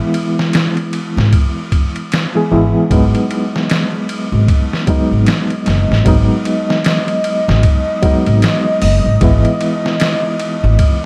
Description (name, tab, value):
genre	trip hop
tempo	76 BPM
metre	4/4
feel	swing 60% on 16ths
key	G# minor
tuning	A4 = 444 Hz
part	overdriven reed electric piano	accompaniment	0.0-11.1 s	E3 to G#4	-19 LUFS	equal	tremolo, tape echo
part	trip hop sampler-style drum kit	drums	0.1-11.0 s	hi-hat, kick drum, ride cymbal, snare drum	-19 LUFS	equal	none
part	upright bass	bass	1.2-10.8 s	F#1 to G#1	-15 LUFS	equal	none
part	dark analog pad	sustained chords	3.3-11.1 s	D#5	-23 LUFS	equal	chorus
room	light reverb, digital ambience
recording	vinyl crackle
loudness	-14 LUFS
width	mono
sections	0.0-11.1 A section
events	none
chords	0.0 E; 2.9 G#m7; 9.2 E